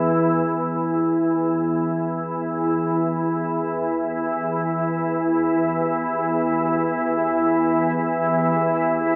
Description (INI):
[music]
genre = dark ambient drone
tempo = free time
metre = none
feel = none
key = E minor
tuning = A4 = 441 Hz
[part]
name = organ-like drone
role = drone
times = 0.0-9.2 s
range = E2 to E3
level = -22 LUFS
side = equal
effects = ensemble chorus, built-in reverb
[part]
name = dark analog pad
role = sustained chords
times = 3.7-9.2 s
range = B3 to E5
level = -35 LUFS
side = equal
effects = none
[sound]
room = wet cathedral reverb, RT60 5.1 s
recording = AM radio sound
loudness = -22 LUFS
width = mono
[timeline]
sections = 0.7-9.2 A section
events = none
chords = 0.0 N.C.; 0.7 Em